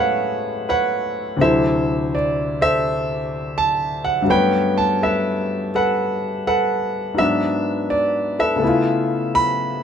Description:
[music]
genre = solo jazz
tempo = 83 BPM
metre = 4/4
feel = swing 66% on 8ths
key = unclear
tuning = A4 = 437 Hz
[part]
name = clear grand piano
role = solo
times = 0.0-9.8 s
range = D2 to B5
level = -17 LUFS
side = equal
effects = none
[sound]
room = moderate small room ambience, RT60 0.5 s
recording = none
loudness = -17 LUFS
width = side -8 dB against mid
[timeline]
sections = 0.0-9.8 A section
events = none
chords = 0.0 Amaj9; 1.4 D9; 4.3 Gmaj9#11; 7.2 G#m7b5; 8.6 C#7alt

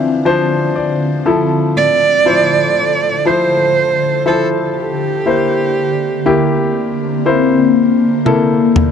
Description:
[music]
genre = pop ballad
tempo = 60 BPM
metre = 4/4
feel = straight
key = F major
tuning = A4 = 440 Hz
[part]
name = warm baby grand piano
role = accompaniment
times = 0.0-8.9 s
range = E3 to G5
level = -16 LUFS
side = left 3 dB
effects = none
[part]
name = ethereal airy pad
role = sustained chords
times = 0.0-8.9 s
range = D3 to A4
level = -16 LUFS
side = left 2 dB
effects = ensemble chorus, built-in reverb, phaser
[part]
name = dark cello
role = melody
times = 1.8-6.7 s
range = G4 to D5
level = -14 LUFS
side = right 4 dB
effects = tape echo
[part]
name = toms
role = drums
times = 8.3-8.9 s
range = none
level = -16 LUFS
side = equal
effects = none
[sound]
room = little or no reverb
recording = dry, close 1970s-style studio recording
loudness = -11 LUFS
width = side -7 dB against mid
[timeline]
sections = 0.0-8.9 A section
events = grand piano fill 0.0-1.3; drum fill 8.3-8.9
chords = 0.0 Dm7; 1.3 Fmaj7; 5.3 C7

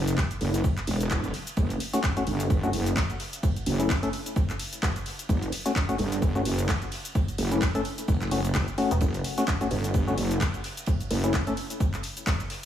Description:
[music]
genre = bass house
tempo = 129 BPM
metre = 4/4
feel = swing 57% on 16ths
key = F# phrygian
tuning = A4 = 439 Hz
[part]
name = wobble bass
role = bass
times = 0.0-11.3 s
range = E1 to G1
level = -26 LUFS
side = equal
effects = chorus, overdrive, sidechain pumping
[part]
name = house drum kit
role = drums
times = 0.1-12.6 s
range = handclaps, hi-hat, shaker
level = -33 LUFS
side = left 1 dB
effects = studio reverb
[part]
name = electronic kick drum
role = drums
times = 0.2-12.4 s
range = none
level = -28 LUFS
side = equal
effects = studio reverb
[part]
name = unplugged drum kit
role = drums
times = 0.2-12.6 s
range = ride cymbal, snare drum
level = -42 LUFS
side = right 3 dB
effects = high-pass filter on cymbals, studio reverb, high-pass filter on snare, high-pass filter on room
[part]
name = percussive organ stab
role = stabs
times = 1.9-11.5 s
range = A3 to A4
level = -30 LUFS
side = left 2 dB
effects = chorus, sidechain pumping, digital delay
[part]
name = metallic FM bass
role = bass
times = 8.9-9.0 s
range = E1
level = -24 LUFS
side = equal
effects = overdrive, sidechain pumping
[sound]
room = light reverb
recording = small room ambience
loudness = -24 LUFS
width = side -10 dB against mid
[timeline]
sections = 0.0-12.7 A section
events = none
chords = 0.0 F#m

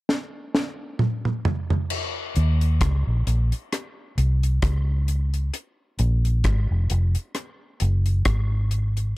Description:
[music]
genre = dub reggae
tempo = 66 BPM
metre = 4/4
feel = swing 56% on 16ths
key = Eb dorian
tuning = A4 = 438 Hz
[part]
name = deep reggae drum kit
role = drums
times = 0.1-9.2 s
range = crash cymbal, hi-hat, kick drum, rim click, snare drum, toms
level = -25 LUFS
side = equal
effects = none
[part]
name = vintage muted fingered electric bass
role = bass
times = 2.4-9.1 s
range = F1 to Eb2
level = -20 LUFS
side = equal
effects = none
[sound]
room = little or no reverb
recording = none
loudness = -21 LUFS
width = side -19 dB against mid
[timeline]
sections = 0.0-1.9 A section; 1.9-9.2 B section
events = drum fill 0.1-1.9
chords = none

